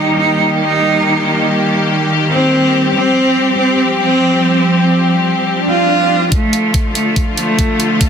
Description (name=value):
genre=heavy wobble dubstep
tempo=142 BPM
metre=4/4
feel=half-time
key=D phrygian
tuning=A4 = 440 Hz
part: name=clear cello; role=melody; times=0.0-8.1 s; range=A3 to F4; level=-14 LUFS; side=right 1 dB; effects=low-pass filter, dub echo
part: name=bright studio string section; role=sustained chords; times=0.0-8.1 s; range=D3 to G4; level=-14 LUFS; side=equal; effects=sidechain pumping
part: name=swell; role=sound effects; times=5.6-6.3 s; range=none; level=-19 LUFS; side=left 4 dB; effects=none
part: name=electronic hi-hat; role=drums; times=6.3-8.1 s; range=none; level=-20 LUFS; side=right 2 dB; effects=overdrive
part: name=electronic kick drum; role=drums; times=6.3-8.1 s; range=none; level=-15 LUFS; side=equal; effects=overdrive
room=moderate lush hall reverb, RT60 1.9 s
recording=dense, heavily limited modern master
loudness=-11 LUFS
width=side -7 dB against mid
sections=0.0-6.3 A section; 6.3-8.1 B section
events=swell 5.6-6.3; build-up 6.3-8.1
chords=0.0 Eb; 2.9 Fsus2; 6.3 Dm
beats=0.40 0.83 | 1.25 1.67 2.09 2.52 | 2.94 3.36 3.78 4.21 | 4.63 5.05 5.47 5.90 | 6.32 6.74 7.16 7.59 | 8.01